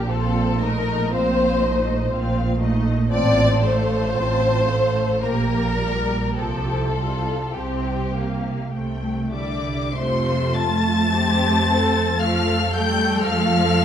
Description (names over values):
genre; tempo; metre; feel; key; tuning
classical, slow romantic movement for string orchestra; 48-61 BPM; 3/4; rubato; F major from 3.1 s; A4 = 440 Hz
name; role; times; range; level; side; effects
warm studio violin section; melody; 0.0-13.8 s; Bb4 to A6; -28 LUFS; left 4 dB; none
warm studio violin section; second line; 0.0-13.8 s; G4 to A5; -23 LUFS; left 2 dB; none
warm studio viola section; accompaniment; 0.0-13.8 s; F3 to Bb4; -26 LUFS; left 1 dB; none
rich studio cello section; bass; 0.1-13.8 s; A2 to A3; -25 LUFS; right 2 dB; none
rich studio double bass section; bass; 0.1-13.8 s; A1 to F2; -25 LUFS; right 3 dB; none
room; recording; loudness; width
wet recital hall reverb, RT60 1.5 s; none; -18 LUFS; side -9 dB against mid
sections
0.0-10.0 A section; 10.0-13.8 B section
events
none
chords
0.1 F7/Bb; 3.1 F/A; 5.2 Gm/Bb; 6.4 Csus4; 8.7 C; 10.0 F; 13.2 N.C.